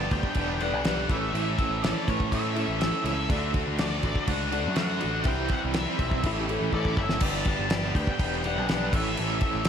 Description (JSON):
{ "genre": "classic rock", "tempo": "122 BPM", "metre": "4/4", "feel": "straight", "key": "A mixolydian", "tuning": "A4 = 438 Hz", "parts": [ { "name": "octave-fuzz lead guitar", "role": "melody", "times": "0.0-9.7 s", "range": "C#5 to A5", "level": "-33 LUFS", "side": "left 1 dB", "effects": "wah, distortion, slapback echo" }, { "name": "dark upright piano", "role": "accompaniment", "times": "0.0-9.6 s", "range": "C#4 to E5", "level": "-36 LUFS", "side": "left 6 dB", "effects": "slapback echo" }, { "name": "distorted electric guitar", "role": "riff", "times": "0.0-7.2 s", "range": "G2 to D4", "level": "-36 LUFS", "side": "right 1 dB", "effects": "overdrive, slapback echo" }, { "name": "overdriven electric guitar", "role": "riff", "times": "0.0-9.7 s", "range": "G2 to F#4", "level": "-34 LUFS", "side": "right 12 dB", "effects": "tremolo, slapback echo" }, { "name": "tight distorted guitar", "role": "riff", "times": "0.0-9.7 s", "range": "G2 to A4", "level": "-34 LUFS", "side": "left 11 dB", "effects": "distortion, slapback echo" }, { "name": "growling picked electric bass", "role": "bass", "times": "0.0-9.7 s", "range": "E1 to A2", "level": "-31 LUFS", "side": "equal", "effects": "overdrive" }, { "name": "damped 70s drum kit", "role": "drums", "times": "0.1-9.7 s", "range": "crash cymbal, kick drum, snare drum", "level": "-29 LUFS", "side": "equal", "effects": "none" }, { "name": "clean lap steel guitar", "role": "second line", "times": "6.3-7.1 s", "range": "E4 to A4", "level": "-35 LUFS", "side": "left 2 dB", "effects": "slapback echo, analog delay" } ], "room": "moderate recital hall reverb, RT60 1.5 s, studio reverb", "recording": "big arena sound", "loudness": "-24 LUFS", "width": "side -8 dB against mid", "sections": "0.0-7.2 A section; 7.2-9.7 A section", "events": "drum fill 6.7-7.2", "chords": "0.0 G; 1.1 A; 3.3 D; 5.3 C; 6.2 A; 7.2 G; 8.9 A" }